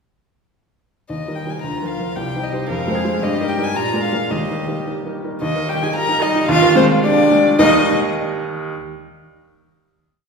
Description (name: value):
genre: quick classical-period movement for piano trio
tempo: 111 BPM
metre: 2/4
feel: straight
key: Eb major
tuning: A4 = 440 Hz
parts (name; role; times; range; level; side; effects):
- dark violin; melody; 1.1-7.9 s; C5 to Bb5; -20 LUFS; left 5 dB; none
- clear baby grand piano; accompaniment; 1.1-8.7 s; C2 to Eb5; -20 LUFS; equal; none
- dark cello; second line; 1.6-7.9 s; C4 to Bb4; -21 LUFS; right 5 dB; none
room: wet recital hall reverb, RT60 1.7 s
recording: recorded in a church or concert hall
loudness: -16 LUFS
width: side -5 dB against mid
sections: 1.1-5.4 A section; 5.4-7.6 coda; 7.6-8.7 final chord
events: none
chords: 1.1 Eb; 1.6 Bb/D; 2.2 Cm; 2.7 Fm; 3.2 Eb/G; 3.8 Bb7; 4.3 Eb; 6.5 Bb7/Eb; 7.6 Eb